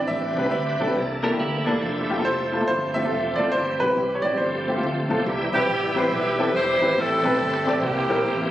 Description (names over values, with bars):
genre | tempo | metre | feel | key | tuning
gospel | 139 BPM | 4/4 | swing 63% on 8ths | C major | A4 = 441 Hz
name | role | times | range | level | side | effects
bright grand piano | melody | 0.0-4.8 s | B4 to E5 | -24 LUFS | right 1 dB | slapback echo
warm upright piano | accompaniment | 0.0-8.5 s | G2 to D5 | -25 LUFS | left 2 dB | none
bright tonewheel organ | sustained chords | 0.0-8.5 s | E3 to B4 | -28 LUFS | right 1 dB | slow rotary speaker, chorus vibrato
fingered electric bass | bass | 0.0-8.5 s | E1 to D2 | -32 LUFS | equal | none
clean electric guitar | second line | 1.2-2.1 s | Bb3 to Bb4 | -29 LUFS | right 2 dB | analog chorus
bright saxophone section | melody | 5.5-8.5 s | Bb3 to C5 | -22 LUFS | right 1 dB | slapback echo
room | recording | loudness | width
moderate concert hall reverb, RT60 2.1 s | recorded on a phone in the room | -20 LUFS | side -13 dB against mid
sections
0.0-5.3 A section; 5.3-8.5 B section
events
none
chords
0.1 Am11; 1.0 C13; 1.8 Fmaj9; 2.7 G9sus4; 3.5 C/G; 4.4 G9sus4; 5.3 Cmaj7; 7.0 Am9; 7.8 C7